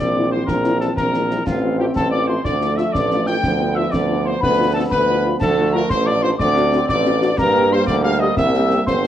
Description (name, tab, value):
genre	military-style march for wind band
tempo	122 BPM (dotted quarters)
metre	6/8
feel	straight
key	unclear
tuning	A4 = 442 Hz
part	mellow trumpet section	melody	0.0-9.1 s	F4 to G5	-22 LUFS	equal	none
part	hollow piccolo	second line	0.0-9.1 s	F5 to G6	-23 LUFS	left 3 dB	none
part	mellow trombone section	sustained chords	0.0-9.1 s	E3 to C4	-25 LUFS	right 1 dB	none
part	clear tuba	bass	0.0-9.1 s	G1 to G2	-20 LUFS	right 2 dB	none
part	dark French horn section	accompaniment	0.2-9.1 s	G3 to G4	-25 LUFS	left 3 dB	none
part	concert snare drum, concert bass drum and clash cymbals	drums	0.5-9.1 s	none	-26 LUFS	left 1 dB	none
room	moderate large studio reverb, RT60 0.8 s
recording	worn, warbling old tape, cassette tape, warbly pitch drift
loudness	-15 LUFS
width	side -10 dB against mid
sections	0.0-9.1 A section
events	none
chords	0.0 C7/Bb; 1.5 F/A; 2.5 Dm; 3.4 G7/D (rootless); 5.4 Dm; 6.4 D7; 7.4 Gm; 8.4 C7